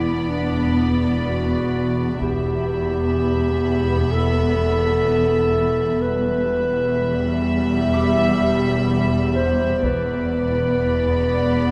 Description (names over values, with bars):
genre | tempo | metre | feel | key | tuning
cinematic, suspense film score | 63 BPM | 4/4 | straight | E minor | A4 = 440 Hz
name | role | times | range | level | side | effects
rich studio violin section | melody | 0.0-11.7 s | B5 | -36 LUFS | equal | none
clear studio violin section | second line | 0.0-11.7 s | D5 to E5 | -32 LUFS | equal | none
dark clarinet | second line | 0.0-11.7 s | D4 to E5 | -25 LUFS | equal | none
warm studio viola section | accompaniment | 0.0-11.7 s | G3 to B3 | -29 LUFS | equal | none
warm studio cello section | bass | 0.0-11.7 s | E2 | -27 LUFS | equal | none
warm studio double bass section | bass | 0.0-11.7 s | E1 | -27 LUFS | equal | none
swarming drone | drone | 0.0-11.7 s | E2 | -31 LUFS | equal | built-in reverb
Celtic harp | texture | 0.0-11.7 s | D6 to F#6 | -41 LUFS | equal | none
taiko ensemble | drums | 2.2-4.1, 9.8-11.7 s | none | -32 LUFS | equal | none
room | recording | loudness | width
wet cathedral reverb, RT60 5.6 s | in a vast, echoing space | -20 LUFS | mono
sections
0.0-11.7 A section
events
none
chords
0.0 Bm/E; 2.2 Em; 9.8 Bm/E